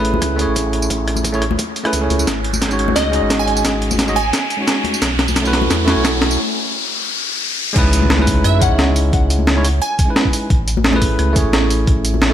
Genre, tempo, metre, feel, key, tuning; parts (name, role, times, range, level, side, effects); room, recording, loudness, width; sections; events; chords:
liquid drum and bass; 175 BPM; 4/4; swing 53% on 16ths; C# minor; A4 = 441 Hz
bell-like tine electric piano; accompaniment; 0.0-12.3 s; G#3 to D#5; -20 LUFS; equal; digital delay
warm sub bass; bass; 0.0-12.3 s; G#1 to F#2; -19 LUFS; equal; tube saturation
breakbeat sampler-style drum kit; drums; 0.0-12.3 s; crash cymbal, hi-hat, rim click, snare drum, tambourine; -19 LUFS; right 1 dB; studio reverb
riser and impact; sound effects; 0.0-9.1 s; -24 LUFS; left 1 dB
congas; percussion; 0.1-5.7, 8.0-12.2 s; -25 LUFS; left 5 dB
electronic kick drum; drums; 0.2-11.9 s; -19 LUFS; equal; high-pass filter on kick, studio reverb
glassy wavetable pluck; melody; 3.0-4.4, 8.4-10.1 s; D#5 to G#5; -22 LUFS; right 2 dB; chorus, tape echo
light reverb; -14 LUFS; side -10 dB against mid
0.0-7.8 A section; 7.8-12.3 B section
build-up 0.0-7.8; riser 0.0-7.8; drum fill 2.3-6.4; break 6.4-7.8; drop 7.8-12.3; impact 7.8-9.1
0.0 Amaj9; 2.3 G#7sus4; 5.0 B9sus4; 7.8 C#m9; 10.5 Amaj9